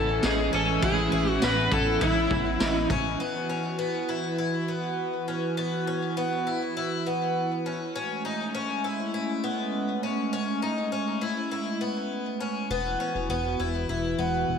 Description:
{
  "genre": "dream pop",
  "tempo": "101 BPM",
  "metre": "4/4",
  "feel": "straight",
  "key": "E major",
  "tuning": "A4 = 442 Hz",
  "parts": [
    { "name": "overdriven slide guitar", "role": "melody", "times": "0.0-2.9 s", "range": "E4 to B4", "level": "-27 LUFS", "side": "left 1 dB", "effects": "wide subtle chorus, ping-pong delay" },
    { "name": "semi-hollow electric guitar", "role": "accompaniment", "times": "0.0-3.7 s", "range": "A2 to E4", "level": "-33 LUFS", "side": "right 8 dB", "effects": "tremolo, wide subtle chorus" },
    { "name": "hollow soft pad", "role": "sustained chords", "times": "0.0-14.6 s", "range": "E3 to B4", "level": "-30 LUFS", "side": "right 1 dB", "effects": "chorus" },
    { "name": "picked twelve-string acoustic guitar", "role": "arpeggios", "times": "0.0-14.6 s", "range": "B3 to F#4", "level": "-29 LUFS", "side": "left 3 dB", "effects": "lush chorus, ping-pong delay" },
    { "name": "chorused synth bass", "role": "bass", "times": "0.0-3.2, 12.7-14.6 s", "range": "E1 to A1", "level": "-31 LUFS", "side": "equal", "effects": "none" },
    { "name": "raw garage drum kit", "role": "drums", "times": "0.2-3.0 s", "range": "kick drum, ride cymbal, snare drum, tambourine", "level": "-31 LUFS", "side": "equal", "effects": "none" }
  ],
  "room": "wet plate reverb, RT60 1.9 s",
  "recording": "dreamy mix soaked in reverb",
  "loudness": "-25 LUFS",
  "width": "side -7 dB against mid",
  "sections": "0.0-3.2 A section; 3.2-14.6 B section",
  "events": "none",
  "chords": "0.0 Amaj7; 3.2 Esus2; 8.0 Amaj7; 12.7 Esus2"
}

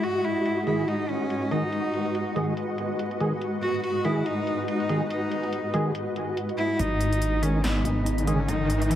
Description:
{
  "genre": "deep dubstep",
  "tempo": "142 BPM",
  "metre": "4/4",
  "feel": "swing 56% on 16ths, half-time",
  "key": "G# minor",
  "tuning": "A4 = 439 Hz",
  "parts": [
    { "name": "warm cello", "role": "melody", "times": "0.0-8.9 s", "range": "B3 to F#4", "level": "-28 LUFS", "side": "equal", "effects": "low-pass filter, dub echo" },
    { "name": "granular cloud pad", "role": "sustained chords", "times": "0.0-9.0 s", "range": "G#3 to D#5", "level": "-32 LUFS", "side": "left 2 dB", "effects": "built-in reverb" },
    { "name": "deep house drum kit", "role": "drums", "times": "0.0-9.0 s", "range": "hi-hat, snare drum", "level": "-37 LUFS", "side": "left 1 dB", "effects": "high-pass filter on hats, low-pass filter on hats, high-pass filter on snare, low-pass filter on snare, high-pass filter on room, low-pass filter on room" },
    { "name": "flickering grainy texture", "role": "texture", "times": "0.0-9.0 s", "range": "D#4 to F#4", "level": "-32 LUFS", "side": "right 1 dB", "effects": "built-in reverb" },
    { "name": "percussive organ stab", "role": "stabs", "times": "0.7-8.4 s", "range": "D#3 to G#4", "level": "-30 LUFS", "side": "right 1 dB", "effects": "ensemble chorus, dub echo" },
    { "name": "dark detuned saw bass", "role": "bass", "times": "6.8-9.0 s", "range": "G#1", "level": "-26 LUFS", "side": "equal", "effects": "none" },
    { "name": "electronic kick drum", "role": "drums", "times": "6.8-8.6 s", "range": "none", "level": "-33 LUFS", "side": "equal", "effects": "high-pass filter on kick, high-pass filter on room" },
    { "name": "riser", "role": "sound effects", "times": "7.8-9.0 s", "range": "none", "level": "-30 LUFS", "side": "equal", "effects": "none" }
  ],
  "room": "moderate lush hall reverb, RT60 1.9 s, digital ambience",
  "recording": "vinyl crackle",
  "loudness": "-24 LUFS",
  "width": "side -11 dB against mid",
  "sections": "0.0-6.8 A section; 6.8-9.0 B section",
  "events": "build-up 6.8-9.0; riser 7.8-9.0",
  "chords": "0.0 G#5"
}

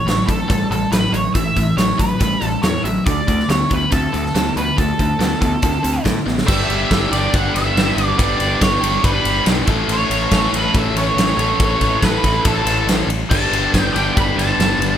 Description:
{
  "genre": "classic rock",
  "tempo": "140 BPM",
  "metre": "4/4",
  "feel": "straight",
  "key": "unclear",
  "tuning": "A4 = 439 Hz",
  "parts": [
    { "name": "octave-fuzz lead guitar", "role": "melody", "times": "0.0-15.0 s", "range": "A4 to B5", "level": "-21 LUFS", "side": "right 2 dB", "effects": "wah, distortion" },
    { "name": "overdriven electric guitar", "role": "riff", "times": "0.0-15.0 s", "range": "G2 to A4", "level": "-20 LUFS", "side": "left 1 dB", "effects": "none" },
    { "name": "modern bright picked electric bass", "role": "bass", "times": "0.1-14.9 s", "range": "G1 to A2", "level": "-23 LUFS", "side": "equal", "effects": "none" },
    { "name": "big rock drum kit", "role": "drums", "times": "0.1-14.9 s", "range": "crash cymbal, hi-hat, kick drum, ride cymbal, snare drum", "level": "-19 LUFS", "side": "equal", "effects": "none" }
  ],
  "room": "little or no reverb",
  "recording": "none",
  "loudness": "-14 LUFS",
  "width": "side -10 dB against mid",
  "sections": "0.0-6.5 A section; 6.5-15.0 B section",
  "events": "drum fill 6.3",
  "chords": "0.0 A; 3.1 D5; 6.5 G; 9.7 A; 13.3 G"
}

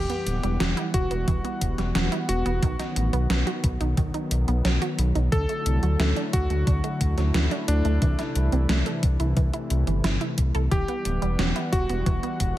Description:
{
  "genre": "synthwave",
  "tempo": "89 BPM",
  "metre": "4/4",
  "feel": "straight",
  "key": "E minor",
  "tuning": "A4 = 440 Hz",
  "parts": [
    { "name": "clear electric grand piano", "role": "melody", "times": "0.0-12.6 s", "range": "D4 to A4", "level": "-31 LUFS", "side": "left 1 dB", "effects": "ping-pong delay" },
    { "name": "warm analog pad", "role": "sustained chords", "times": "0.0-12.6 s", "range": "C3 to F#5", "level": "-30 LUFS", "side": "equal", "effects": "chorus, vintage 12-bit sampler grit, sidechain pumping" },
    { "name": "wide unison pluck", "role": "arpeggios", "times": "0.0-12.4 s", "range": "D3 to A4", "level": "-32 LUFS", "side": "right 4 dB", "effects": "ping-pong delay" },
    { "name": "round analog bass", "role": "bass", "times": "0.0-12.5 s", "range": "D1 to D2", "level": "-24 LUFS", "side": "equal", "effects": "sidechain pumping" },
    { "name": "gated 80s digital drum machine", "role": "drums", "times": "0.1-12.5 s", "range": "hi-hat, snare drum", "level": "-29 LUFS", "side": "left 1 dB", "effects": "gated reverb, gated reverb snare, overdrive" },
    { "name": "electronic kick drum", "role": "drums", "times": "0.9-12.5 s", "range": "none", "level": "-26 LUFS", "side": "equal", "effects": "overdrive" }
  ],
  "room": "digital ambience",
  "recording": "none",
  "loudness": "-22 LUFS",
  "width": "side -14 dB against mid",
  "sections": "0.0-12.6 A section",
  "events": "none",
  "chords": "0.0 Emadd9; 2.6 B; 5.3 Dadd9; 8.0 Am/C; 10.7 Emadd9"
}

